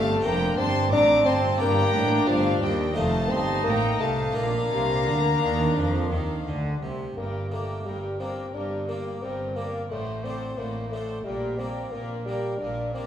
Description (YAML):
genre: classical, baroque-style concerto movement with solo episodes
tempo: 88 BPM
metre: 4/4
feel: straight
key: Bb major, G minor from 7.2 s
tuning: A4 = 440 Hz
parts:
  - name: dark bassoon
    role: melody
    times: 0.0-13.1 s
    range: F3 to D4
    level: -27 LUFS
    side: left 1 dB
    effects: none
  - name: rich chamber violin section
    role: melody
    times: 0.0-13.1 s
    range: F5 to D6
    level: -32 LUFS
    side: left 8 dB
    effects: none
  - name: rich chamber violin section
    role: second line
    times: 0.0-13.1 s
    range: D5 to Bb5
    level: -34 LUFS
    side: left 1 dB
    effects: none
  - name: harpsichord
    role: accompaniment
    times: 0.0-13.1 s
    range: Eb2 to Eb5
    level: -35 LUFS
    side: left 1 dB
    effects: none
  - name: warm chamber viola section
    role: accompaniment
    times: 0.0-13.1 s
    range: C4 to C5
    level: -32 LUFS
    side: right 2 dB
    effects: none
  - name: rich chamber double bass section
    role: bass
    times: 0.0-13.1 s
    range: F1 to F2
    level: -31 LUFS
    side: right 1 dB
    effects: none
  - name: warm chamber cello section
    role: bass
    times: 0.0-13.1 s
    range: Eb2 to F3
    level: -32 LUFS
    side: right 2 dB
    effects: none
room: wet recital hall reverb, RT60 1.6 s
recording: heard from further back in the room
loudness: -23 LUFS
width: side -9 dB against mid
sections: 0.0-7.2 A section; 7.2-13.1 B section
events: none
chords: 0.2 F; 1.6 Gm; 3.0 F7; 4.4 Bb; 7.2 Gm; 9.9 D7/A; 11.3 Gm/Bb